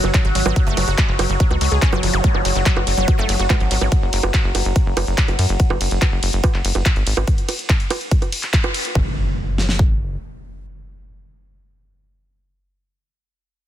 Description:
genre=psychedelic trance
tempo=143 BPM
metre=4/4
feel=straight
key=unclear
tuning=A4 = 440 Hz
part: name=overtone-sweeping drone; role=sustained chords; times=0.0-5.6 s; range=F#3 to F#4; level=-26 LUFS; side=left 1 dB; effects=chorus, built-in reverb, vintage 12-bit sampler grit, sidechain pumping
part: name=wide unison pluck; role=riff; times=0.0-3.9 s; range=E#3 to G#4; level=-25 LUFS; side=moving between left 5 dB and right 4 dB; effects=auto-pan, cassette tape, sidechain pumping, ping-pong delay
part: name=tight sequencer bass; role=bass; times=0.0-10.2 s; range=F#1 to F#2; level=-20 LUFS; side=equal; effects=none
part: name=big-room dance drum kit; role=drums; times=0.0-8.9 s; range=bongos, handclaps, hi-hat, ride cymbal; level=-23 LUFS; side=right 2 dB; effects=none
part: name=big-room dance drum kit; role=drums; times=0.1-9.9 s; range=kick drum, snare drum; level=-17 LUFS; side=equal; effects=none
part: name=zap and impact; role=sound effects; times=2.1-2.2, 9.0-12.7 s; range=none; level=-28 LUFS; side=equal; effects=none
room=little or no reverb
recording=dense, heavily limited modern master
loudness=-16 LUFS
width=side -12 dB against mid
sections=0.0-9.0 A section; 9.0-12.3 B section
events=drop 0.0-9.0; band accent 8.5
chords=0.0 F#5; 9.0 N.C.

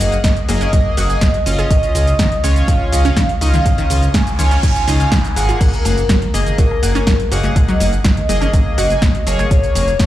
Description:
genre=progressive house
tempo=123 BPM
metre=4/4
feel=straight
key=F# major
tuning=A4 = 440 Hz
part: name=warm velvety synth lead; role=melody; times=0.0-10.1 s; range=A#4 to G#5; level=-21 LUFS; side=equal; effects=chorus, digital delay
part: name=chorused polysynth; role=stabs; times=0.0-9.9 s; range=A#3 to G#5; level=-23 LUFS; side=left 1 dB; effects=sidechain pumping, tape echo
part: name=fat analog bass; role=bass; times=0.0-9.9 s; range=E#1 to C#2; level=-15 LUFS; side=equal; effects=sidechain pumping
part: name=deep house drum kit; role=drums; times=0.0-10.1 s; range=crash cymbal, hi-hat, shaker, snare drum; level=-22 LUFS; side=equal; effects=overdrive
part: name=analog pluck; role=arpeggios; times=0.2-10.0 s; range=D#3 to G#4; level=-24 LUFS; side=equal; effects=chorus, sidechain pumping, tape echo
part: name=electronic kick drum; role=drums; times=0.2-10.1 s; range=none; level=-14 LUFS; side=equal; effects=none
part: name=noise sweep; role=sound effects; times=4.0-5.6 s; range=none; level=-30 LUFS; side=right 2 dB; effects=none
part: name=woodblock and congas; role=percussion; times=5.6-10.0 s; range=none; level=-28 LUFS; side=left 4 dB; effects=sidechain pumping on perc
room=little or no reverb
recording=played on a big sound system in a bare room, large studio reverb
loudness=-12 LUFS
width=side -14 dB against mid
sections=0.0-10.1 A section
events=noise sweep 4.0-5.6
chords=0.0 F#add9; 1.7 C#add9; 5.6 F#add9; 9.5 A#m7

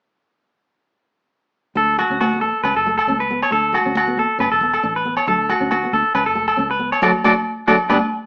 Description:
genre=highlife guitar band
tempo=137 BPM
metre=4/4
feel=swing 54% on 16ths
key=D major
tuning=A4 = 438 Hz
part: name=fingerpicked steel-string acoustic guitar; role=accompaniment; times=1.8-8.0 s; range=F#3 to D4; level=-28 LUFS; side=equal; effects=none
part: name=clean electric guitar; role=arpeggios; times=1.8-8.0 s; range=D4 to D5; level=-20 LUFS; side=equal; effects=none
part: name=fingered electric bass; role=bass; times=1.8-8.0 s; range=E1 to D2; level=-32 LUFS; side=equal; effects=none
part: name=congas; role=percussion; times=1.8-8.0 s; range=none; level=-29 LUFS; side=equal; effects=none
part: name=agogo bells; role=percussion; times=2.0-8.0 s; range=none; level=-25 LUFS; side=equal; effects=none
room=moderate studio reverb, RT60 0.7 s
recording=band playing live in one room, small speaker sound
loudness=-18 LUFS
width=mono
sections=1.8-8.3 A section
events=band accent 7.0-8.3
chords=1.8 D; 2.6 A; 3.5 D; 4.4 G (rootless); 5.3 D; 6.1 A; 7.0 D

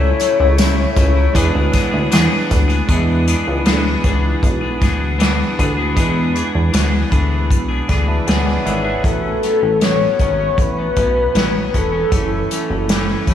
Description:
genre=indie pop, bedroom pop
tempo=78 BPM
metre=4/4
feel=straight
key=unclear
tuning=A4 = 440 Hz
part: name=soft octave-layered synth lead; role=melody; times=0.0-2.5, 9.1-12.9 s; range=A4 to C#5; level=-19 LUFS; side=left 4 dB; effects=tremolo, wide subtle chorus, slapback echo, analog delay
part: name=barky tine electric piano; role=accompaniment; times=0.0-13.3 s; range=F#3 to B5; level=-25 LUFS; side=right 4 dB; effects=overdrive, slapback echo
part: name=clean electric guitar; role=accompaniment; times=0.0-13.3 s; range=F#2 to G#4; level=-22 LUFS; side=left 3 dB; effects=wide subtle chorus, vibrato effect, slapback echo
part: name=chorused synth bass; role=bass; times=0.0-13.3 s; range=E1 to E2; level=-18 LUFS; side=equal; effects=none
part: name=unplugged drum kit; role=drums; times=0.2-13.3 s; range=hi-hat, kick drum, snare drum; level=-19 LUFS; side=equal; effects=none
part: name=tambourine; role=percussion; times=0.2-2.7 s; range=none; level=-34 LUFS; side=right 7 dB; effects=none
room=moderate lush hall reverb, RT60 2.7 s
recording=big arena sound, studio ambience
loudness=-14 LUFS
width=side -10 dB against mid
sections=0.0-2.9 A section; 2.9-9.0 B section; 9.0-13.3 C section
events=tine electric piano fill 7.5-9.0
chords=0.0 A6/C#; 1.4 E7; 9.0 A69; 12.1 F#m7

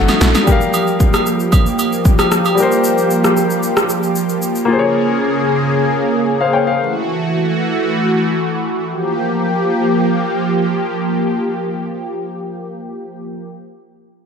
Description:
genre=amapiano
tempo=114 BPM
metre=4/4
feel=straight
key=G minor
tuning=A4 = 440 Hz
part: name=warm grand piano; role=accompaniment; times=0.0-6.9 s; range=F#3 to G5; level=-18 LUFS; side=left 5 dB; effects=none
part: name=warm analog pad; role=sustained chords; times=0.0-13.5 s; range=Db3 to Ab4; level=-16 LUFS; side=right 1 dB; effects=chorus, sidechain pumping
part: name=deep house drum kit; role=drums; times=0.1-4.7 s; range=kick drum, rim click, shaker, snare drum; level=-15 LUFS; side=equal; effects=overdrive
part: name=agogo bells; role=percussion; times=0.1-2.6 s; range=none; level=-22 LUFS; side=right 8 dB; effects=none
room=light reverb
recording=none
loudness=-13 LUFS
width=side -6 dB against mid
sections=0.5-8.9 A section; 8.9-13.1 B section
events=drum fill 0.0-0.5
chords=0.5 Gm7; 4.7 Bbm7; 6.8 F#m7; 8.9 Gm7

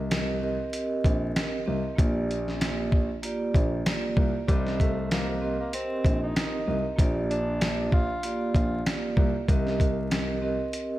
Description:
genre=hip hop, boom-bap hip-hop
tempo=96 BPM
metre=4/4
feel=swing 57% on 16ths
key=C minor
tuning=A4 = 441 Hz
part: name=vibraphone with soft mallets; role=accompaniment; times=0.0-11.0 s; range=Bb3 to Eb5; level=-30 LUFS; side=right 2 dB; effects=high-pass filter, low-pass filter
part: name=dark baby grand piano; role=bass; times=0.0-10.6 s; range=Bb1 to C2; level=-31 LUFS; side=left 1 dB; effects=none
part: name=dusty soul sampler-style drum kit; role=drums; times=0.1-10.9 s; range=hi-hat, kick drum, snare drum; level=-26 LUFS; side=equal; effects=none
part: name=breathy tenor saxophone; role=melody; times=4.5-8.8 s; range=G3 to F4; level=-33 LUFS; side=equal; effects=high-pass filter, low-pass filter, digital delay
room=light reverb, small room reverb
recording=vinyl crackle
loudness=-24 LUFS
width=side -16 dB against mid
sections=0.0-11.0 A section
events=none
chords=0.0 Cm7; 2.0 Bb6; 4.5 Cm7; 7.0 Bb6; 9.5 Cm7

